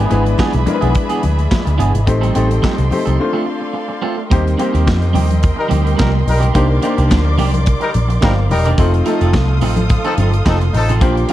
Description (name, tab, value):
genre	disco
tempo	107 BPM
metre	4/4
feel	straight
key	unclear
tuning	A4 = 440 Hz
part	bright grand piano	accompaniment	0.0-11.3 s	G#3 to G5	-21 LUFS	left 3 dB	none
part	clean electric guitar	accompaniment	0.0-11.3 s	Eb3 to A4	-22 LUFS	right 6 dB	none
part	clear studio string section	sustained chords	0.0-11.3 s	G#4 to Eb6	-25 LUFS	right 1 dB	none
part	picked electric bass with an envelope filter	bass	0.0-11.2 s	E1 to F2	-15 LUFS	equal	none
part	modern studio drum kit	drums	0.1-11.3 s	handclaps, hi-hat, kick drum, snare drum	-18 LUFS	equal	none
part	congas	percussion	0.1-11.2 s	none	-24 LUFS	left 3 dB	none
part	warm horn section	stabs	5.6-10.9 s	F3 to Bb4	-22 LUFS	left 2 dB	none
room	studio ambience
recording	dark, warm production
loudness	-12 LUFS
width	side -14 dB against mid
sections	0.0-4.3 A section; 4.3-11.3 B section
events	break 3.2-4.3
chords	0.0 E7; 2.1 Am7b5; 3.2 Dm7; 4.3 Eb6; 6.5 Cm9; 8.8 F7